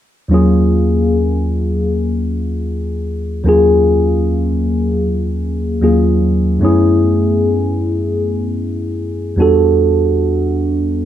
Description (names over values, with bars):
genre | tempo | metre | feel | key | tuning
R&B | 76 BPM | 4/4 | swing 56% on 16ths | Eb minor | A4 = 440 Hz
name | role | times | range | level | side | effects
tine electric piano | accompaniment | 0.3-11.1 s | Eb2 to A4 | -12 LUFS | equal | phaser
room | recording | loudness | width
moderate studio reverb, RT60 0.6 s | dark, warm production | -13 LUFS | side -11 dB against mid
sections
0.3-11.1 A section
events
none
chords
0.3 Ebm11; 6.6 Gbm11; 9.4 Em11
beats
| 0.29 1.08 1.87 2.66 | 3.45 4.24 5.03 5.82 | 6.61 7.40 8.19 8.97 | 9.77 10.55